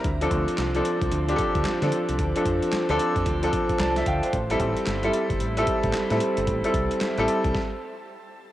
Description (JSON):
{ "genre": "R&B, new jack swing", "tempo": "112 BPM", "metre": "4/4", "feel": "swing 62% on 16ths", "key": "unclear", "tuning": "A4 = 440 Hz", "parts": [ { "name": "clear concert grand piano", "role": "accompaniment", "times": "0.0-7.6 s", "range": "F3 to A5", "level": "-24 LUFS", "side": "equal", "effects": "cassette tape, shimmer reverb" }, { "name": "deep dub fingered electric bass", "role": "bass", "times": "0.0-7.5 s", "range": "G1 to D3", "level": "-28 LUFS", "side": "equal", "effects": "none" }, { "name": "boom bap sampler-style drum kit", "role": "drums", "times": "0.0-7.7 s", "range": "handclaps, hi-hat, kick drum, snare drum", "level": "-30 LUFS", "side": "equal", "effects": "overdrive, cassette tape" } ], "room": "wet spring reverb, RT60 1.9 s", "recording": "home recording on cassette", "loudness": "-22 LUFS", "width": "side -14 dB against mid", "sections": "0.0-8.5 A section", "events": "grand piano fill 3.5-4.3; stop 7.5-8.5", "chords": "0.0 Dm7; 4.3 Am7" }